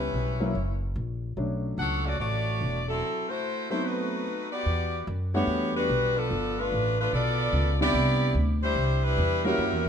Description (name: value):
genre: jazz, big band swing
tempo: 146 BPM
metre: 4/4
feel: swing 65% on 8ths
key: B minor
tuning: A4 = 441 Hz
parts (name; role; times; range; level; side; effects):
- clear saxophone section; melody; 0.0-9.8 s; E#3 to F#5; -27 LUFS; left 1 dB; none
- upright bass; bass; 0.0-9.9 s; E1 to F#2; -28 LUFS; equal; none
- clear grand piano; accompaniment; 0.4-9.9 s; C3 to F#5; -30 LUFS; right 1 dB; none
room: moderate large studio reverb, RT60 1.2 s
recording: none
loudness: -24 LUFS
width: side -8 dB against mid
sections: 0.0-4.7 A section; 4.7-9.9 B section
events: none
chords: 0.0 C#m7b5; 0.5 F#7; 1.4 Bm9; 3.0 F#m7b5; 4.7 Em11; 6.3 G9; 7.9 Cmaj9